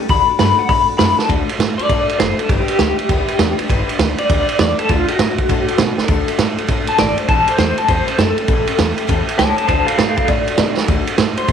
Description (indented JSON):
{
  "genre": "rockabilly",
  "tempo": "200 BPM",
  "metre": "4/4",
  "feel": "swing 64% on 8ths",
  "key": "D major",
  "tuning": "A4 = 439 Hz",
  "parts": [
    { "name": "picked acoustic archtop guitar", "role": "accompaniment", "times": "0.0-11.5 s", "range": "A2 to B4", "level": "-24 LUFS", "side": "left 14 dB", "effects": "none" },
    { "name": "electric guitar through a small old amp", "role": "melody", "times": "0.1-11.5 s", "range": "F4 to B5", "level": "-17 LUFS", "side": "left 3 dB", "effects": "tremolo, tape echo" },
    { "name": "upright bass", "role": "bass", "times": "0.1-11.5 s", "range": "F#1 to B2", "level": "-22 LUFS", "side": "equal", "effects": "none" },
    { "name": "vintage drum kit", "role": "drums", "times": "0.1-11.5 s", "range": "hi-hat, kick drum, ride cymbal, snare drum", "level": "-17 LUFS", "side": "right 4 dB", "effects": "none" }
  ],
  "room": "light reverb, studio reverb",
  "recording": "1960s-style stereo",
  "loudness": "-13 LUFS",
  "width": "side -8 dB against mid",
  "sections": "0.0-1.3 A section; 1.3-10.9 B section",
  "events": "drum fill 1.1, 5.9, 10.7",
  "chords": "0.1 D; 2.5 G; 4.9 D; 7.3 A7; 9.7 D",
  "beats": "| 0.10 0.40 0.69 0.99 | 1.29 1.59 1.89 2.19 | 2.49 2.79 3.09 3.39 | 3.69 3.99 4.29 4.59 | 4.89 5.19 5.49 5.79 | 6.09 6.39 6.69 6.99 | 7.29 7.59 7.89 8.19 | 8.49 8.79 9.09 9.39 | 9.69 9.99 10.29 10.59 | 10.89 11.19 11.49"
}